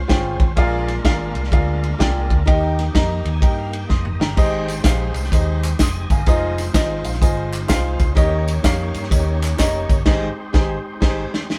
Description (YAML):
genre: uptempo gospel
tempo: 126 BPM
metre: 4/4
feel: swing 65% on 8ths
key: Ab major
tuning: A4 = 441 Hz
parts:
  - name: overdriven tonewheel organ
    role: sustained chords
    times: 0.0-11.6 s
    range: Ab3 to Bb5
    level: -33 LUFS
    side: equal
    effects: slow rotary speaker, chorus vibrato
  - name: fingered electric bass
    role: bass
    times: 0.0-11.2 s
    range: F1 to G2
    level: -25 LUFS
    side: equal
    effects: none
  - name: warm upright piano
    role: accompaniment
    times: 0.1-11.2 s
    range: Ab2 to Eb6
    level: -26 LUFS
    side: equal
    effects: none
  - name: warm soul drum kit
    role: drums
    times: 0.1-11.6 s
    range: crash cymbal, kick drum, ride cymbal, snare drum, toms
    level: -20 LUFS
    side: equal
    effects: none
  - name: tambourine and handclaps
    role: percussion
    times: 4.4-10.0 s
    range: none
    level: -35 LUFS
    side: equal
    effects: none
room: light reverb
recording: band playing live in one room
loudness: -19 LUFS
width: mono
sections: 0.0-11.6 A section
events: tonewheel organ fill 2.9-4.4; drum fill 3.9-4.4, 11.0-11.6; upright piano fill 6.7-8.2, 11.0-11.6; band accent 10.1-11.6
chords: 0.0 Dbmaj7; 0.6 Bb7; 2.5 Eb; 6.3 Fm7; 8.2 Eb7; 10.1 Abmaj7